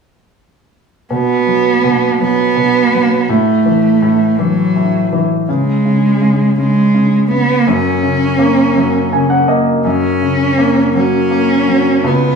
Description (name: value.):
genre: pop.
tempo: 55 BPM (dotted quarters).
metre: 6/8.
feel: straight.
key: unclear.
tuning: A4 = 440 Hz.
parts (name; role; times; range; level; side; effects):
warm cello; melody; 1.1-12.4 s; F#3 to C#4; -13 LUFS; right 2 dB; none.
clear baby grand piano; accompaniment; 1.1-12.4 s; C#2 to G#5; -14 LUFS; left 1 dB; none.
room: wet stone room reverb, RT60 1.2 s.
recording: band playing live in one room, studio reverb.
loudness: -10 LUFS.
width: side -5 dB against mid.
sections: 1.1-12.4 A section.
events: grand piano fill 8.8-9.9.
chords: 1.1 B5; 3.3 A5; 5.5 N.C.; 7.7 F#.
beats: | 1.11 2.20 | 3.29 4.39 | 5.48 6.57 | 7.67 8.76 | 9.85 10.94 | 12.04.